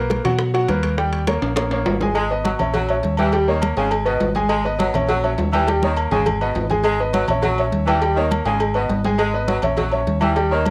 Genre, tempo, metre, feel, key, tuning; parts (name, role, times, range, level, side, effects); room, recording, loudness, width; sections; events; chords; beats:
latin, salsa; 205 BPM; 4/4; straight; G# minor; A4 = 440 Hz
bright concert grand piano; accompaniment; 0.0-10.7 s; F#3 to G#5; -24 LUFS; equal
deep dub fingered electric bass; bass; 0.0-10.7 s; G#1 to B2; -26 LUFS; equal
bongos and cowbell; percussion; 0.1-10.7 s; -30 LUFS; equal
congas; percussion; 0.1-10.7 s; -28 LUFS; equal
timbales and agogo bells; percussion; 0.1-10.7 s; -29 LUFS; equal
bright saxophone section; second line; 2.2-10.7 s; B2 to G#3; -26 LUFS; equal
light reverb; home recording on cassette; -19 LUFS; mono
0.0-2.2 A section; 2.2-10.7 B section
drum fill 1.4-2.2, 5.7-6.8
0.0 Bmaj7; 1.0 D#7; 2.2 G#m7; 2.7 A#dim; 3.3 D#7; 3.9 G#m; 4.5 G#m7; 5.1 A#dim; 5.7 D#7; 6.3 G#m; 6.8 G#m7; 7.4 A#dim; 8.0 D#7; 8.6 G#m; 9.2 G#m7; 9.8 A#dim
0.10 0.40 0.69 | 0.98 1.28 1.57 1.86 | 2.16 2.45 2.74 3.04 | 3.33 3.62 3.92 4.21 | 4.50 4.79 5.09 5.38 | 5.67 5.97 6.26 6.55 | 6.84 7.14 7.43 7.72 | 8.02 8.31 8.60 8.90 | 9.19 9.48 9.78 10.07 | 10.36 10.66